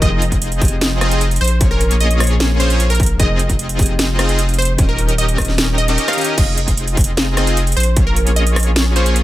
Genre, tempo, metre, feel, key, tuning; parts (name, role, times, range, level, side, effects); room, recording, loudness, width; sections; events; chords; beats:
future bass; 151 BPM; 4/4; half-time; F minor; A4 = 440 Hz
wide unison pluck; melody; 0.0-9.2 s; Bb4 to F5; -22 LUFS; right 1 dB; sidechain pumping, digital delay
glassy digital keys; accompaniment; 0.0-6.4 s; Bb2 to C6; -26 LUFS; left 4 dB; chorus, sidechain pumping, digital delay
soft supersaw; riff; 0.0-9.2 s; Bb3 to Eb5; -21 LUFS; equal; cassette tape, sidechain pumping
saturated sub bass; bass; 0.0-9.2 s; Eb1 to Bb1; -17 LUFS; equal; sidechain pumping
electronic kick drum; drums; 0.0-8.0 s; -17 LUFS; equal; distortion
trap drum kit; drums; 0.0-9.2 s; crash cymbal, hi-hat, rim click, snare drum; -20 LUFS; right 1 dB; overdrive
little or no reverb; -13 LUFS; side -15 dB against mid
0.0-6.4 A section; 6.4-9.2 A section
drop 0.0-6.4, 6.4-9.2
0.0 Fm7; 1.4 Bbm7; 3.2 Fm7; 4.8 Eb7; 6.4 Fm7; 7.8 Bbm7
| 0.02 0.41 0.81 1.21 | 1.61 2.00 2.40 2.80 | 3.20 3.59 3.99 4.39 | 4.79 5.18 5.58 5.98 | 6.38 6.77 7.17 7.57 | 7.96 8.36 8.76 9.16